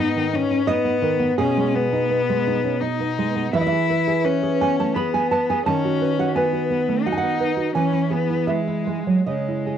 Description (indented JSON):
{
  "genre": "romantic duo for cello and classical guitar",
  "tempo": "85 BPM",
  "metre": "3/4",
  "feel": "rubato",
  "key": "E major from 3.5 s",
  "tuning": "A4 = 440 Hz",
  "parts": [
    { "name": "rich cello", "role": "melody", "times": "0.0-9.8 s", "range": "G#3 to E4", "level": "-22 LUFS", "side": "left 7 dB", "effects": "none" },
    { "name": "nylon-string guitar", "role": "accompaniment", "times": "0.0-9.8 s", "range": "G#2 to B5", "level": "-21 LUFS", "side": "right 5 dB", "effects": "none" }
  ],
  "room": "moderate studio reverb, RT60 0.6 s",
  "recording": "home recording on cassette",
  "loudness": "-19 LUFS",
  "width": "side -9 dB against mid",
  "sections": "0.0-9.8 A section",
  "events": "none",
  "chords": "0.0 G#m; 1.4 G#m/B; 3.5 E; 5.6 B7/D#; 7.7 E; 9.2 C#m"
}